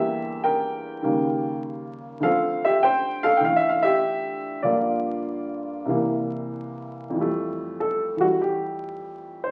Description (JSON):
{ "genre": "solo jazz", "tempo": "99 BPM", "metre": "4/4", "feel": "swing 69% on 8ths, rubato", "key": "F major", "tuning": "A4 = 440 Hz", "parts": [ { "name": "warm baby grand piano", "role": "solo", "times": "0.0-9.5 s", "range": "C2 to G5", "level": "-25 LUFS", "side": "equal", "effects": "none" } ], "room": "wet large studio reverb, RT60 0.8 s", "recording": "very old 78 rpm record, vinyl crackle", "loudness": "-24 LUFS", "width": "mono", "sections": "0.0-7.2 A section; 7.2-9.5 B section", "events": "grand piano solo 7.2-9.5", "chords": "0.0 Em7b5; 1.0 Eb7; 2.2 Dm7; 4.6 Gm7; 5.9 C7; 7.2 Fmaj9" }